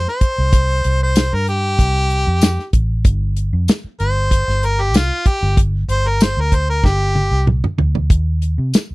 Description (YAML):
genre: straight-eighth soul blues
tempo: 95 BPM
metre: 4/4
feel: straight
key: G minor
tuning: A4 = 440 Hz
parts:
  - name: clear harmonica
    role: melody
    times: 0.0-7.5 s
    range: F4 to C5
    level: -20 LUFS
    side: equal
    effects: overdrive
  - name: vintage muted fingered electric bass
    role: bass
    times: 0.0-8.9 s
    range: G1 to C3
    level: -17 LUFS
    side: equal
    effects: none
  - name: warm soul drum kit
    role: drums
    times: 0.1-8.9 s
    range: hi-hat, kick drum, snare drum, tambourine, toms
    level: -14 LUFS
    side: equal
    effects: none
room: little or no reverb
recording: dry, close 1970s-style studio recording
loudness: -14 LUFS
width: side -22 dB against mid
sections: 0.0-8.9 A section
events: drum fill 6.8-8.1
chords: 0.0 C5; 3.0 G5; 8.1 N.C.